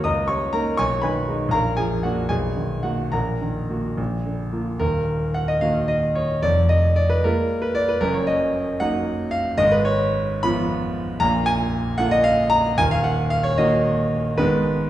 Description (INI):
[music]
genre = classical, romantic character piece for solo piano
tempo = 69-82 BPM (dotted quarters)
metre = 6/8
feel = rubato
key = Eb minor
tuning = A4 = 435 Hz
[part]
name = clear concert grand piano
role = solo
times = 0.0-14.9 s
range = Eb1 to Eb6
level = -19 LUFS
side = equal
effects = none
[sound]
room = wet recital hall reverb, RT60 1.6 s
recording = heard from further back in the room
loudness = -19 LUFS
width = side -13 dB against mid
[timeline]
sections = 0.0-4.8 A section; 4.8-14.9 B section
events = none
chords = 0.0 Eb7/Db; 0.8 Abm/Cb; 1.5 Bb; 2.3 Bmaj7; 3.1 Ebm/Bb; 4.0 Bb; 4.8 Ebm; 6.4 Bb5/F; 8.0 Ebm/Gb; 9.6 Fdim/Ab; 11.2 Bb7; 12.8 Ebm; 14.4 Abm